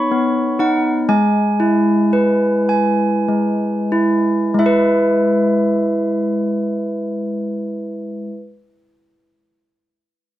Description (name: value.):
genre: children's music, lullaby.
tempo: 29-43 BPM (dotted quarters).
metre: 6/8.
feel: rubato.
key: E major.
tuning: A4 = 440 Hz.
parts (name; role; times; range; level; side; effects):
handbells; solo; 0.0-8.4 s; G#3 to C#6; -15 LUFS; equal; none.
room: small room ambience.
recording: dry, close 1970s-style studio recording.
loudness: -14 LUFS.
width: side -13 dB against mid.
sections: 0.0-4.6 A section; 4.6-8.6 B section.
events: slowing down 0.0-4.6.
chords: 0.0 Badd9; 1.1 E.